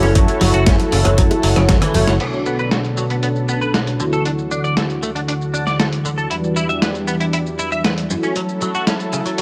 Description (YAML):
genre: nu-disco, nu disco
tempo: 117 BPM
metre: 4/4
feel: straight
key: B minor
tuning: A4 = 440 Hz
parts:
  - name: mellow synth brass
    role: accompaniment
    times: 0.0-9.4 s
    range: B2 to C#6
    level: -23 LUFS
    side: equal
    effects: chorus, sidechain pumping, dub echo
  - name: lush unison pad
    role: sustained chords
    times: 0.0-9.4 s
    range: D3 to A4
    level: -27 LUFS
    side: equal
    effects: chorus, sidechain pumping
  - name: direct-recorded clean electric guitar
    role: riff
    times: 0.0-9.4 s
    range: F#2 to E5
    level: -26 LUFS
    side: equal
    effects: ensemble chorus, vintage 12-bit sampler grit, low-pass filter, dub echo
  - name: picked electric bass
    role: bass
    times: 0.0-2.2 s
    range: F#1 to F#2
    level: -19 LUFS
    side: equal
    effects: sidechain pumping
  - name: bongos and congas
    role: percussion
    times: 0.0-2.1 s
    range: none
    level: -26 LUFS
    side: equal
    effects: none
  - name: dusty soul sampler-style drum kit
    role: drums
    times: 0.2-9.4 s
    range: crash cymbal, hi-hat, rim click, shaker, snare drum, toms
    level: -24 LUFS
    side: equal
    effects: overdrive, low-pass filter on hats, small room reverb, low-pass filter on snare, low-pass filter on toms, low-pass filter on cymbals, low-pass filter on perc
  - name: electronic kick drum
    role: drums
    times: 0.2-1.8 s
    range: none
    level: -17 LUFS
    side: equal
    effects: overdrive, small room reverb
room: light reverb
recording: none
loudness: -18 LUFS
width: mono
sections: 0.0-2.2 A section; 2.2-9.4 B section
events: drum fill 1.7-2.2; filter sweep on analog polysynth 2.2-9.4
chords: 0.0 F#m7; 2.2 Bm7; 4.0 Dmaj7; 6.3 Em7; 8.1 F#m7